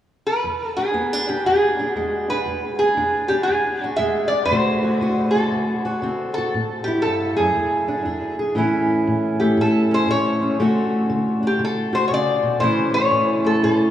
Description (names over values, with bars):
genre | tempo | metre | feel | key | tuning
acoustic country blues, solo or duo | 118 BPM | 4/4 | swing 66% on 8ths | A major | A4 = 440 Hz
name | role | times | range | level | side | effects
lap resonator guitar | melody | 0.3-13.9 s | G4 to E5 | -20 LUFS | equal | none
fingerpicked steel-string acoustic guitar | accompaniment | 0.4-13.9 s | E2 to G#4 | -20 LUFS | equal | none
room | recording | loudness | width
wet cathedral reverb, RT60 6.3 s | in a vast, echoing space, small room ambience | -18 LUFS | side -11 dB against mid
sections
0.4-8.6 A section; 8.6-13.9 B section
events
none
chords
0.4 E7; 4.5 D7; 6.5 A5; 7.6 E7; 8.6 A; 10.6 D; 12.6 A